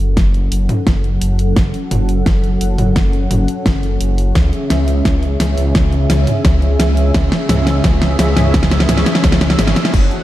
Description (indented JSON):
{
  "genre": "synthwave",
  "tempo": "86 BPM",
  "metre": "4/4",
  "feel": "straight",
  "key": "unclear",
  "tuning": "A4 = 440 Hz",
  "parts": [
    { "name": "warm analog pad", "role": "sustained chords", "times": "0.0-10.2 s", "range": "C#3 to F#5", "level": "-21 LUFS", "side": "equal", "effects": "chorus, sidechain pumping" },
    { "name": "dark detuned saw bass", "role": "bass", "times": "0.0-10.1 s", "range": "F#1 to C#2", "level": "-15 LUFS", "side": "equal", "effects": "none" },
    { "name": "electronic kick drum", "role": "drums", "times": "0.2-10.1 s", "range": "none", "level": "-16 LUFS", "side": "equal", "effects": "none" },
    { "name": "pop drum kit", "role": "drums", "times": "0.2-10.2 s", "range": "crash cymbal, hi-hat, shaker, snare drum, toms", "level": "-17 LUFS", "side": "equal", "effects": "none" }
  ],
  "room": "light reverb",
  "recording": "dark, warm production",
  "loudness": "-12 LUFS",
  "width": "side -14 dB against mid",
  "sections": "0.0-9.9 A section",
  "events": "drum fill 0.0-9.9; filter sweep on analog synth pad 0.0-9.9",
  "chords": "0.0 F#m; 4.4 C#m"
}